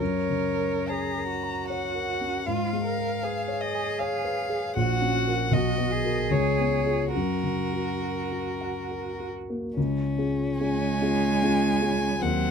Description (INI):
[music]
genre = classical, slow romantic movement for piano quartet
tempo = 65-80 BPM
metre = 3/4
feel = rubato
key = F# major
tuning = A4 = 440 Hz
[part]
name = rich violin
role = melody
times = 0.0-12.5 s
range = A#4 to A#5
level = -30 LUFS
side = left 4 dB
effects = none
[part]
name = rich cello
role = second line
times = 0.0-12.5 s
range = Gb3 to A#4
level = -30 LUFS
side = right 8 dB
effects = none
[part]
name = dark grand piano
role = accompaniment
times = 0.0-12.5 s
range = A#1 to A#5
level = -27 LUFS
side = left 2 dB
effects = none
[part]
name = rich violin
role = second line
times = 9.8-12.5 s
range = C4 to Db4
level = -31 LUFS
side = left 1 dB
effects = none
[sound]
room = light reverb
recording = close, detailed microphones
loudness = -24 LUFS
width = side -6 dB against mid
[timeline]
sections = 0.0-9.8 A section; 9.8-12.5 B section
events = none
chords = 0.0 F#; 2.5 C#7/G#; 4.8 F#/A#; 5.5 Bmaj7; 6.3 C#7; 7.1 F#; 9.8 Db